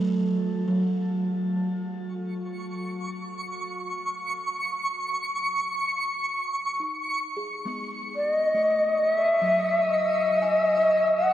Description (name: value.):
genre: ambient.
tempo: free time.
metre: none.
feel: none.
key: F# dorian.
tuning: A4 = 440 Hz.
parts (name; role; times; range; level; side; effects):
buzzing kalimba; arpeggios; 0.0-2.2, 6.8-11.3 s; F#3 to G#5; -29 LUFS; right 1 dB; tape echo.
twinkling granular texture; texture; 2.6-11.3 s; C#6; -30 LUFS; right 1 dB; built-in reverb.
breathy mellow shakuhachi; melody; 8.2-11.3 s; D#5 to F#5; -20 LUFS; left 1 dB; tape echo.
room: wet shimmer reverb, RT60 8.3 s.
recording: worn, warbling old tape, cassette tape, warbly pitch drift.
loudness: -24 LUFS.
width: side -12 dB against mid.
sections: 0.0-7.3 A section; 7.3-11.3 B section.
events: fade-out on kalimba 0.0-7.3.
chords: 0.0 N.C.; 7.3 F#madd9; 9.9 G#5/F#.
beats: free time.